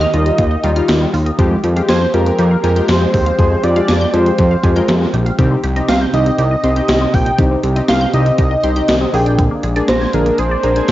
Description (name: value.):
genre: synth-pop.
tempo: 120 BPM.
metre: 4/4.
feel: straight.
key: unclear.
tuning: A4 = 440 Hz.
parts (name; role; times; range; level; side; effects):
wide unison lead; melody; 0.0-10.9 s; Bb4 to G5; -18 LUFS; right 1 dB; cassette tape.
sweeping resonant pad; sustained chords; 0.0-10.9 s; C3 to G4; -24 LUFS; right 1 dB; none.
resonant blip pluck; arpeggios; 0.0-10.9 s; D3 to Ab6; -24 LUFS; right 1 dB; phaser, cassette tape, tape echo.
fat analog bass; bass; 0.0-10.9 s; Bb1 to F2; -16 LUFS; equal; none.
warm analog keys; accompaniment; 0.1-10.9 s; G3 to Bb4; -20 LUFS; left 2 dB; chorus, cassette tape.
gated 80s digital drum machine; drums; 0.1-10.9 s; hi-hat, kick drum, snare drum; -18 LUFS; equal; gated reverb, gated reverb snare, overdrive.
room: light reverb, digital ambience.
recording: home recording on cassette, nothing above 7.6 kHz.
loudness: -12 LUFS.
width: side -14 dB against mid.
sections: 0.0-10.9 A section.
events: none.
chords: 0.0 Ebadd9; 1.4 Fmadd9; 5.4 Cm; 9.1 Bb7.